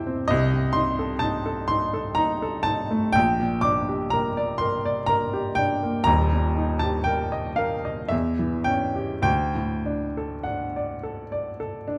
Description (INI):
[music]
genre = classical, romantic nocturne for solo piano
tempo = 49-66 BPM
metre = 3/4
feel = rubato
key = G minor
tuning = A4 = 440 Hz
[part]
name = clear upright piano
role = solo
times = 0.0-12.0 s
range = Eb1 to D6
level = -25 LUFS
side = equal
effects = none
[sound]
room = moderate large studio reverb, RT60 1.2 s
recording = dark, warm production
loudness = -25 LUFS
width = mono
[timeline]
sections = 0.0-12.0 A section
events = none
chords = 0.3 Adim/C; 3.2 Gm/Bb; 6.1 Eb; 8.1 Em6; 9.3 D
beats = | 0.31 1.24 2.20 | 3.17 4.13 5.09 | 6.07 7.07 8.12 | 9.26 10.47 11.61